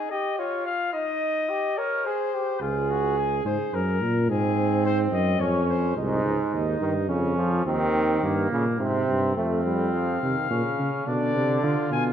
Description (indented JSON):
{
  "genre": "classical, imitative canzona for brass ensemble",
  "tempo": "107 BPM",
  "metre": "3/4",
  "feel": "straight",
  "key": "Db major",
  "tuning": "A4 = 441 Hz",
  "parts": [
    { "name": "mellow trumpet", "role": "melody", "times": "0.0-6.0, 9.4-12.0 s", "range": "F4 to Ab5", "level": "-28 LUFS", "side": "left 7 dB", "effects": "none" },
    { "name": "warm flugelhorn", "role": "second line", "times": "0.0-12.1 s", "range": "Bb3 to Bb4", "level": "-28 LUFS", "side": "right 4 dB", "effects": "none" },
    { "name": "warm tuba", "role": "bass", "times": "2.6-12.1 s", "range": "C2 to D3", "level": "-25 LUFS", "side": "right 1 dB", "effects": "none" },
    { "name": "clear trombone", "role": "accompaniment", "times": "6.0-12.1 s", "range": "Ab2 to A3", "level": "-27 LUFS", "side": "equal", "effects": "none" }
  ],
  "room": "wet recital hall reverb, RT60 1.5 s",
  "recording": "none",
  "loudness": "-22 LUFS",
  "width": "side -9 dB against mid",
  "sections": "0.0-9.4 A section; 9.4-12.1 B section",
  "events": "none",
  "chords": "0.4 Db/F; 0.9 Eb; 2.0 Ab; 2.6 Db; 3.7 Gb; 4.3 Ab; 5.4 Db/F; 6.0 Ab/C; 7.1 Db/F; 7.7 Eb; 8.8 Ab; 9.4 F; 10.5 Bbm; 11.1 Cbdim"
}